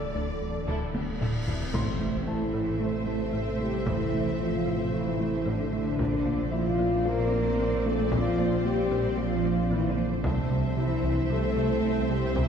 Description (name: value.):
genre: cinematic, hybrid orchestral and electronic film score.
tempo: 113 BPM.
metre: 4/4.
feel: straight.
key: unclear.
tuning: A4 = 438 Hz.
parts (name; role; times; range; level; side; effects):
warm symphonic violin section; melody; 0.0-12.5 s; D5 to E5; -40 LUFS; left 3 dB; none.
ethereal airy pad; sustained chords; 0.0-12.5 s; C3 to E5; -35 LUFS; right 1 dB; ensemble chorus, built-in reverb.
thumb-piano-like synth pluck; arpeggios; 0.0-12.5 s; C3 to F4; -38 LUFS; left 2 dB; none.
round analog bass; riff; 0.0-12.5 s; C2 to Bb3; -33 LUFS; right 2 dB; none.
detuned saw bass; bass; 0.0-12.5 s; D1 to C2; -35 LUFS; equal; none.
rich symphonic cello section; bass; 0.0-12.4 s; C3 to Bb3; -34 LUFS; right 5 dB; none.
cymbal swell and impact; sound effects; 1.0-3.9 s; none; -38 LUFS; equal; none.
clear concert grand piano; texture; 0.0-12.5 s; A3 to E6; -42 LUFS; left 2 dB; none.
rich symphonic violin section; second line; 0.1-12.5 s; D4 to C5; -38 LUFS; left 1 dB; none.
dark symphonic double bass section; bass; 0.1-12.5 s; A1 to D2; -36 LUFS; right 1 dB; none.
rich symphonic viola section; accompaniment; 0.2-12.5 s; D3 to D4; -41 LUFS; right 3 dB; none.
solo taiko drums; drums; 0.7-12.5 s; none; -34 LUFS; left 1 dB; none.
mellow French horn section; sustained chords; 1.5-12.4 s; C4 to Bb4; -30 LUFS; left 3 dB; none.
room: wet scoring stage reverb, RT60 1.8 s.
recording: heard from further back in the room.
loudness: -25 LUFS.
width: side -7 dB against mid.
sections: 0.0-1.7 A section; 1.7-12.5 B section.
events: drum fill 0.9-1.7; cymbal swell 1.0-1.7; impact 1.7-3.9.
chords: 0.0 Dsus2; 1.7 Am; 6.0 Bbadd9; 10.2 C.